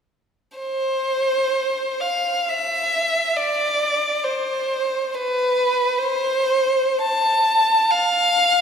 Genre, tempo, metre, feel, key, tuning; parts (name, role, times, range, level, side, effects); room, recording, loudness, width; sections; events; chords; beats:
classical, free, expressive piece for unaccompanied violin; free time; A4 = 443 Hz
clear violin; solo; 0.6-8.6 s; B4 to A5; -18 LUFS; equal
wet church reverb, RT60 2.6 s; recorded in a church or concert hall; -18 LUFS; side -7 dB against mid
0.6-8.6 A section
free time